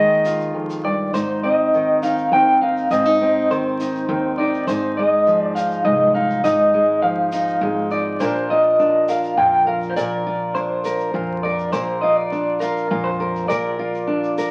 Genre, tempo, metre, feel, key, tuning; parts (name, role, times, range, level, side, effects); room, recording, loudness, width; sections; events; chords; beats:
acoustic folk duo or small band; 102 BPM; 3/4; straight; A4 = 441 Hz
dark clarinet; second line; 0.0-0.7 s; Eb5; -19 LUFS; equal
fingerpicked steel-string acoustic guitar; accompaniment; 0.0-14.5 s; Eb2 to Bb4; -25 LUFS; equal
upright bass; bass; 0.0-14.5 s; Ab1 to F2; -35 LUFS; equal
tube shaker; percussion; 0.2-14.5 s; -44 LUFS; equal
electric guitar through a small old amp; melody; 0.8-14.5 s; Bb4 to G5; -21 LUFS; equal; tremolo
wet studio reverb, RT60 0.8 s; very old 78 rpm record, vinyl crackle; -19 LUFS; mono
0.0-1.1 A section; 1.1-14.5 B section
clarinet solo 0.0-1.1
0.0 Ebsus2; 1.1 Ab; 4.7 Fm7/Ab; 8.2 Bbadd9
0.55 | 1.14 1.73 2.32 | 2.91 3.50 4.09 | 4.68 5.27 5.86 | 6.44 7.03 7.62 | 8.21 8.80 9.38 | 9.97 10.56 11.14 | 11.73 12.32 12.91 | 13.49 14.08